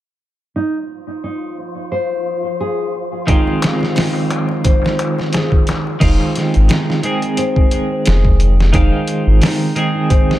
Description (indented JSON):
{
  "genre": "trip hop",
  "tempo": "88 BPM",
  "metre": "4/4",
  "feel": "swing 55% on 16ths",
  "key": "F minor",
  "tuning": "A4 = 440 Hz",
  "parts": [
    { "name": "nylon-string guitar", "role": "arpeggios", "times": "0.6-10.4 s", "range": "Eb4 to C5", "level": "-22 LUFS", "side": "left 1 dB", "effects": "low-pass filter, analog delay" },
    { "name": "wind-like tuned noise texture", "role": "texture", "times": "1.0-6.0 s", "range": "F3 to F4", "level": "-29 LUFS", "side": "left 1 dB", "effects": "built-in reverb" },
    { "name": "twelve-string electric guitar", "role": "accompaniment", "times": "3.3-10.4 s", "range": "Eb3 to Ab4", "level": "-18 LUFS", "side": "right 1 dB", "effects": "tremolo, vintage 12-bit sampler grit, tape echo" },
    { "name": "trip hop sampler-style drum kit", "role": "drums", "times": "3.3-10.4 s", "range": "crash cymbal, hi-hat, kick drum, snare drum", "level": "-16 LUFS", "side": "equal", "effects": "overdrive" },
    { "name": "darbuka", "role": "percussion", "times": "3.3-6.0 s", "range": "none", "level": "-28 LUFS", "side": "left 2 dB", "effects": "analog delay" },
    { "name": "warm sub bass", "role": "bass", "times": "6.0-9.4 s", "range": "F1 to Ab1", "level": "-12 LUFS", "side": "equal", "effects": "none" }
  ],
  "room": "digital ambience",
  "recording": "echo-heavy mix",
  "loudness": "-13 LUFS",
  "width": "side -14 dB against mid",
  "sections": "0.6-6.0 A section; 6.0-10.4 B section",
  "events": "filter sweep on nylon-string guitar 6.0-10.4",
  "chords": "0.6 Fm7",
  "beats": "| 0.56 1.24 1.92 2.60 | 3.29 3.97 4.65 5.33 | 6.01 6.69 7.38 8.06 | 8.74 9.42 10.10"
}